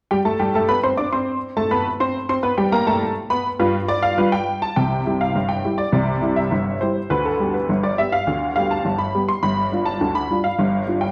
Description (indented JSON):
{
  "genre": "ragtime piano",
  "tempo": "103 BPM",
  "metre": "2/4",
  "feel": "straight",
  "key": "C major",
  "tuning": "A4 = 440 Hz",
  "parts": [
    { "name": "honky-tonk upright piano", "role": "solo", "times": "0.1-11.1 s", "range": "G1 to D6", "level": "-20 LUFS", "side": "equal", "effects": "none" }
  ],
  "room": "wet recital hall reverb, RT60 1.5 s",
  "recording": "recorded in a church or concert hall",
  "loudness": "-20 LUFS",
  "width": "mono",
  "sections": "0.1-4.8 A section; 4.8-11.1 B section",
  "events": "none",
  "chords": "0.1 C5; 2.4 G7; 4.8 C; 7.1 G; 9.4 G5"
}